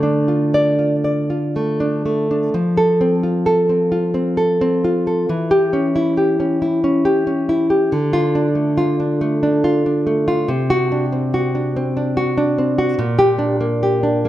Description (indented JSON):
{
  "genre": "romantic piece for solo classical guitar",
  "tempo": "40-50 BPM (dotted quarters)",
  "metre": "6/8",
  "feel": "rubato",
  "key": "D minor",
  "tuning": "A4 = 441 Hz",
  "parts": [
    { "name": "nylon-string guitar", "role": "solo", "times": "0.0-14.3 s", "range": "Bb2 to D5", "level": "-15 LUFS", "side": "equal", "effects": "none" }
  ],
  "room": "moderate recital hall reverb, RT60 1.7 s",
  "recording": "none",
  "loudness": "-15 LUFS",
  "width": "side -13 dB against mid",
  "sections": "0.0-2.5 A section; 2.5-14.3 B section",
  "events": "none",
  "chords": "0.0 Dm; 2.5 F; 5.3 Em6; 7.9 Dm; 10.5 D7/C; 13.0 Gm/Bb"
}